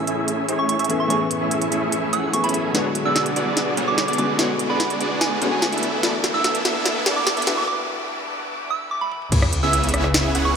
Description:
future bass; 146 BPM; 4/4; half-time; B dorian; A4 = 440 Hz
felt-muted upright piano; accompaniment; 0.0-9.3 s; D3 to G#4; -28 LUFS; left 4 dB; sidechain pumping, ping-pong delay
airy breathy pad; sustained chords; 0.0-10.6 s; E2 to C#6; -35 LUFS; right 1 dB; chorus, sidechain pumping
supersaw chords; riff; 0.0-10.5 s; A3 to F#5; -24 LUFS; right 1 dB; sidechain pumping, low-pass filter
riser and sub drop; sound effects; 0.7-10.6 s; -30 LUFS; equal
trap drum kit; drums; 0.1-10.4 s; crash cymbal, hi-hat, rim click, snare drum, toms; -24 LUFS; equal; studio reverb
soft synth bell; melody; 0.6-10.5 s; G#5 to E6; -26 LUFS; right 3 dB; chorus, sidechain pumping, dub echo
wide detuned saw bass; bass; 9.3-10.6 s; C#2; -22 LUFS; left 1 dB; chorus, sidechain pumping
electronic kick drum; drums; 9.3-9.4 s; -18 LUFS; equal; studio reverb
moderate shimmer reverb, RT60 5.4 s; high-pass filter; -18 LUFS; side -6 dB against mid
0.0-9.3 A section; 9.3-10.6 B section
build-up 0.0-9.3; filter sweep on supersaw synth 0.0-9.3; filter sweep 0.0-9.3; riser 0.7-7.7; drum fill 2.7-7.7, 9.0-9.3; break 7.7-9.3; drop 9.3-10.6; impact 9.3-10.6
0.0 Amaj7; 2.7 Bm69; 5.8 E7sus4; 9.3 C#m7

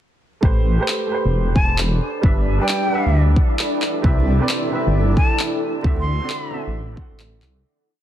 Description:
future garage; 133 BPM; 4/4; swing 66% on 16ths; A dorian; A4 = 440 Hz
clear upright piano; accompaniment; 0.4-7.7 s; C3 to F#5; -25 LUFS; right 2 dB; sidechain pumping, ping-pong delay
swelling detuned saw bass; bass; 0.4-7.6 s; E1 to D2; -18 LUFS; equal; sidechain pumping
electronic kick drum; drums; 0.4-7.1 s; -17 LUFS; equal
wind-like tuned noise texture; texture; 1.5-7.7 s; D4 to D5; -29 LUFS; left 2 dB; built-in reverb
electronic handclaps; drums; 0.9-7.5 s; -24 LUFS; equal
breathy bright concert flute; melody; 1.6-6.6 s; G5 to C6; -26 LUFS; left 1 dB; tape echo
granular cloud pad; sustained chords; 2.8-7.6 s; E4 to G5; -28 LUFS; equal; built-in reverb, sidechain pumping
light reverb; dense, heavily limited modern master, vinyl crackle; -16 LUFS; side -11 dB against mid
0.4-7.6 groove
fade-out 5.2-7.6
0.4 Am9; 2.2 G6; 4.0 Cmaj7; 5.8 D9

